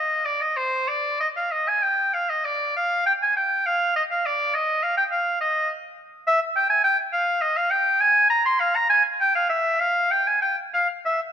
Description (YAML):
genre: classical, baroque-style fantasia for unaccompanied oboe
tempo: 61-70 BPM (dotted quarters)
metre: 6/8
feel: rubato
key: F minor from 6.3 s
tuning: A4 = 438 Hz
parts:
  - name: clear oboe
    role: solo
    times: 0.0-11.2 s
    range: C5 to C6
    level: -20 LUFS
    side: equal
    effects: none
room: moderate scoring stage reverb, RT60 1.9 s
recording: none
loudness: -19 LUFS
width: side -8 dB against mid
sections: 0.0-11.3 A section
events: none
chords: none